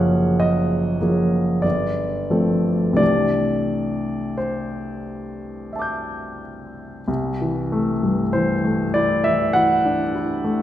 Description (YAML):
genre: classical, impressionist solo piano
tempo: 42-51 BPM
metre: 3/4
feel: rubato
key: unclear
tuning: A4 = 440 Hz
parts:
  - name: warm baby grand piano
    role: solo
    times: 0.0-10.6 s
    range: F#1 to G6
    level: -19 LUFS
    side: equal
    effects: none
room: wet recital hall reverb, RT60 1.4 s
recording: recorded in a church or concert hall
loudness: -18 LUFS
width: side -12 dB against mid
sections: 0.0-7.1 A section; 7.1-10.6 A section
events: none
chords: 0.0 F#maj9; 1.6 G9sus4; 3.0 C69